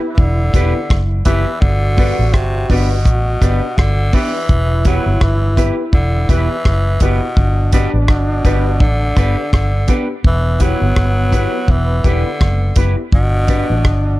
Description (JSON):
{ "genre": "roots reggae", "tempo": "83 BPM", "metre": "4/4", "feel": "swing 57% on 16ths", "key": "E minor", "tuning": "A4 = 440 Hz", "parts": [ { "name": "clear trombone", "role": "second line", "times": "0.0-14.2 s", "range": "B3 to F#4", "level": "-25 LUFS", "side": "right 2 dB", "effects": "tape echo, plate reverb" }, { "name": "dark upright piano", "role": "stabs", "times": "0.0-13.7 s", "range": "B3 to B4", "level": "-24 LUFS", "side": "left 5 dB", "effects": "plate reverb" }, { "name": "growling tenor saxophone", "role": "melody", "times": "0.1-14.2 s", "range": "B2 to F#3", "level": "-21 LUFS", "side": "equal", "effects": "tape echo, plate reverb" }, { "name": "vintage muted fingered electric bass", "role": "bass", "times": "0.2-14.2 s", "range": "E1 to A1", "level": "-15 LUFS", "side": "equal", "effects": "none" }, { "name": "damped 70s drum kit", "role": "drums", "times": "0.2-14.0 s", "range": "hi-hat, kick drum, rim click", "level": "-14 LUFS", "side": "equal", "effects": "none" }, { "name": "electric guitar with an envelope filter", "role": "accompaniment", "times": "0.5-13.7 s", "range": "B3 to B4", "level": "-26 LUFS", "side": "right 5 dB", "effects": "tape echo, plate reverb" } ], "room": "little or no reverb", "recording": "dark, warm production, lossy compression artefacts", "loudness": "-12 LUFS", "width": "side -18 dB against mid", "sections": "0.0-14.2 A section", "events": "none", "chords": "0.0 Em; 1.6 G; 4.5 Em; 7.4 G; 10.2 Em; 13.1 G" }